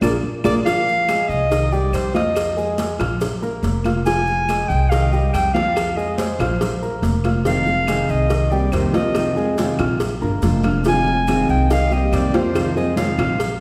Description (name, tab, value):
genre	latin, Cuban son and guajira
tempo	141 BPM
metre	4/4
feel	straight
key	unclear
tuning	A4 = 439 Hz
part	breathy clarinet	melody	0.0-13.6 s	C5 to Ab5	-24 LUFS	equal	none
part	nylon-string guitar	accompaniment	0.0-0.6, 7.4-13.4 s	C3 to G4	-25 LUFS	equal	none
part	dark baby grand piano	arpeggios	0.0-13.5 s	Eb3 to F6	-26 LUFS	equal	none
part	upright bass	bass	0.0-13.6 s	F1 to F2	-24 LUFS	equal	none
part	claves	percussion	0.0-13.4 s	none	-41 LUFS	equal	none
part	congas	percussion	0.0-13.6 s	none	-30 LUFS	equal	none
part	cowbell	percussion	0.0-13.6 s	none	-31 LUFS	equal	none
part	maracas	percussion	0.0-13.6 s	none	-42 LUFS	equal	none
room	wet recital hall reverb, RT60 1.7 s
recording	heard from further back in the room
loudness	-19 LUFS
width	mono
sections	0.7-13.6 A section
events	drum fill 0.0-0.7; band accent 0.0-0.7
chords	0.0 Bb7; 0.7 Fm; 1.5 Cm; 2.4 Fm7; 3.2 Bb5; 4.1 Fm; 4.9 Cm; 5.8 Fm; 6.6 Bb5; 7.5 Fm7; 8.3 Cm7; 9.2 Fm7; 10.0 Bb7; 10.8 Fm7; 11.7 Cm7; 12.5 Fm7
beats	0.24 | 0.66 1.09 1.51 1.94 | 2.36 2.79 3.21 3.64 | 4.06 4.49 4.91 5.33 | 5.76 6.18 6.61 7.03 | 7.45 7.88 8.30 8.73 | 9.15 9.57 10.00 10.43 | 10.85 11.27 11.70 12.12 | 12.55 12.97 13.40